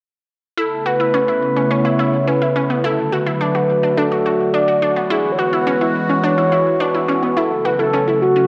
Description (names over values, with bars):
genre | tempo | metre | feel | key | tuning
pop | 106 BPM | 4/4 | straight | A major | A4 = 440 Hz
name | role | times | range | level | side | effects
mellow horn-like synth lead | melody | 0.6-8.5 s | F#4 to D5 | -20 LUFS | equal | chorus, tape echo
sweeping resonant pad | sustained chords | 0.6-8.5 s | C#3 to F#4 | -22 LUFS | equal | chorus, phaser
unison pluck | arpeggios | 0.6-8.5 s | B3 to F#4 | -23 LUFS | equal | tape echo
room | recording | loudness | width
wet spring reverb, RT60 2.2 s | echo-heavy mix | -17 LUFS | mono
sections
0.6-8.5 A section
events
none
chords
0.6 Aadd9; 2.8 D; 5.1 Eadd9; 7.4 F#m